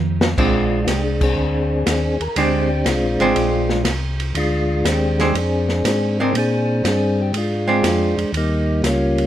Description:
soul jazz organ trio; 120 BPM; 4/4; swing 68% on 8ths; Bb mixolydian; A4 = 441 Hz
mellow tonewheel organ; bass; 0.0-9.3 s; Ab1 to Bb2; -21 LUFS; equal; slow rotary speaker
open jazz drum kit; drums; 0.2-9.3 s; crash cymbal, hi-hat, kick drum, ride cymbal, snare drum; -24 LUFS; equal
percussive tonewheel organ; melody; 0.4-9.3 s; G3 to Bb4; -20 LUFS; left 1 dB; slow rotary speaker
archtop guitar, miked and amplified; accompaniment; 0.4-8.3 s; Ab3 to D4; -20 LUFS; right 4 dB
light reverb; -16 LUFS; side -12 dB against mid
0.4-9.3 A section
drum fill 0.0-0.4; band accent 1.1
0.4 Bb9; 8.3 Eb9
| 0.37 0.87 1.37 1.86 | 2.36 2.86 3.36 3.85 | 4.35 4.85 5.35 5.85 | 6.35 6.85 7.34 7.84 | 8.34 8.84

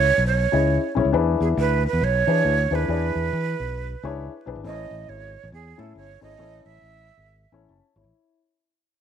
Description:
uptempo 1960s-style soul; 137 BPM; 4/4; swing 61% on 8ths; A4 = 439 Hz
breathy jazz flute; melody; 0.0-7.5 s; G#4 to E5; -24 LUFS; right 9 dB
dark upright piano; accompaniment; 0.0-8.4 s; C#4 to A5; -25 LUFS; left 9 dB
fingered electric bass; bass; 0.0-8.1 s; F#1 to E3; -24 LUFS; equal
light reverb, small room ambience; 1960s-style stereo with parts hard left and right, vinyl crackle; -19 LUFS; side -8 dB against mid
0.0-8.1 A section
fade-out 0.0-8.1
0.0 C#m; 1.1 E7; 4.6 A
0.26 0.70 | 1.14 1.58 2.02 2.45 | 2.89 3.33 3.77 4.20 | 4.64 5.08 5.51 5.95 | 6.38 6.82 7.26 7.69

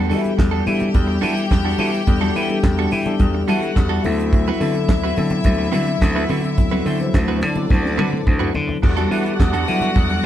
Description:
disco; 107 BPM; 4/4; straight; E minor; A4 = 440 Hz
warm studio string section; second line; 0.0-10.3 s; D4 to G5; -27 LUFS; left 2 dB
clean electric guitar; accompaniment; 0.0-10.3 s; G3 to C5; -26 LUFS; right 7 dB
mellow tine electric piano; accompaniment; 0.0-10.3 s; F3 to C5; -22 LUFS; left 3 dB; phaser
gritty slap bass; bass; 0.0-10.2 s; D2 to E3; -22 LUFS; equal; overdrive
damped 70s drum kit; drums; 0.1-10.2 s; crash cymbal, handclaps, hi-hat, kick drum, snare drum, toms; -19 LUFS; right 1 dB
congas; percussion; 0.1-10.1 s; -27 LUFS; left 3 dB
percussive tonewheel organ; sustained chords; 8.8-10.3 s; G3 to D6; -28 LUFS; right 2 dB; chorus vibrato, slow rotary speaker
moderate studio reverb, RT60 0.8 s; band playing live in one room; -16 LUFS; side -11 dB against mid
0.0-8.8 A section; 8.8-10.3 B section
drum fill 7.7-8.8
0.0 Em11; 4.0 D13; 8.8 Em11
0.39 0.95 1.51 | 2.07 2.64 3.20 3.76 | 4.33 4.89 5.45 6.01 | 6.58 7.14 7.70 8.27 | 8.83 9.39 9.96

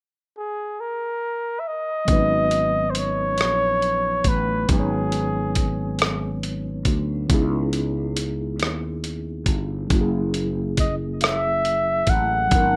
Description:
slow six-eight R&B; 46 BPM (dotted quarters); 6/8; straight; G# minor; A4 = 441 Hz
warm flugelhorn; melody; 0.4-6.4, 10.8-12.8 s; G#4 to F#5; -25 LUFS; equal; plate reverb
mellow tine electric piano; accompaniment; 2.1-12.8 s; D#3 to C#5; -30 LUFS; equal; plate reverb
sustaining fretless electric bass; bass; 2.1-12.8 s; F#1 to D#2; -29 LUFS; equal; lush chorus
dusty soul sampler-style drum kit; drums; 2.1-12.7 s; hi-hat, kick drum, rim click; -24 LUFS; equal
light reverb; rough home demo mix; -23 LUFS; mono
0.0-2.1 A section; 2.1-12.8 B section
0.0 N.C.; 2.1 G#m11; 7.3 C#m9; 9.9 F#9
0.78 | 2.08 3.38 | 4.69 5.99 | 7.30 8.60 | 9.91 11.21 | 12.52

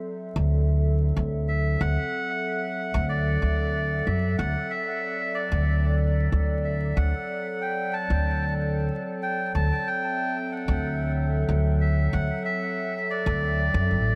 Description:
ambient dub; 93 BPM; 4/4; straight; D mixolydian; A4 = 439 Hz
warbly tape-like pad; sustained chords; 0.0-14.2 s; F#3 to E5; -33 LUFS; equal; chorus, built-in reverb
upright bass; bass; 0.4-14.2 s; A1 to F#2; -26 LUFS; equal
melodica; melody; 1.5-14.2 s; D5 to A5; -31 LUFS; equal; dub echo
light reverb; vinyl crackle; -25 LUFS; mono
0.0-14.2 A section
0.0 D7
0.52 1.16 | 1.81 2.45 3.10 3.74 | 4.39 5.03 5.68 6.32 | 6.97 7.61 8.26 8.90 | 9.55 10.20 10.84 11.48 | 12.13 12.78 13.42 14.07

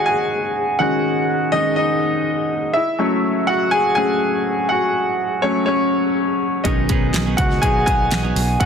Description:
piano-driven pop; 123 BPM; 4/4; straight; A4 = 438 Hz
clear grand piano; accompaniment; 0.0-8.7 s; D#3 to G#5; -17 LUFS; left 1 dB
direct-recorded clean electric guitar; riff; 6.6-8.7 s; B2 to G#4; -26 LUFS; right 6 dB
picked electric bass; bass; 6.7-8.7 s; B1 to C#2; -21 LUFS; equal
pop drum kit; drums; 6.7-8.7 s; handclaps, hi-hat, kick drum, snare drum; -20 LUFS; equal
light reverb; dense, heavily limited modern master; -16 LUFS; side -7 dB against mid
0.0-8.7 A section
grand piano solo 0.0-8.7
0.0 D#madd11; 2.8 F#m; 6.7 B6
0.31 | 0.80 1.29 1.77 2.26 | 2.75 3.24 3.73 4.21 | 4.70 5.19 5.68 6.17 | 6.65 7.14 7.63 8.12 | 8.61

